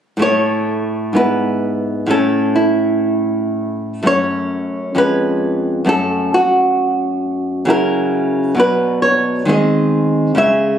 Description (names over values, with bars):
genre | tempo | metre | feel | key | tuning
romantic piece for solo classical guitar | 57-67 BPM | 2/4 | rubato | A major | A4 = 439 Hz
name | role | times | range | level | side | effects
nylon-string guitar | solo | 0.2-10.8 s | E#2 to E5 | -14 LUFS | equal | none
room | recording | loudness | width
moderate recital hall reverb, RT60 1.3 s | recorded on a phone in the room, studio reverb | -14 LUFS | side -9 dB against mid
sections
0.2-10.8 A section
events
none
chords
0.2 A; 1.2 E/G#; 2.1 A; 4.1 F#m; 5.0 C#/E#; 5.9 F#m; 7.7 F#7/C#; 8.6 Bm; 9.5 G#/D#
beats
| 0.23 1.18 | 2.11 3.04 | 4.05 4.98 | 5.88 6.79 | 7.69 8.59 | 9.48 10.38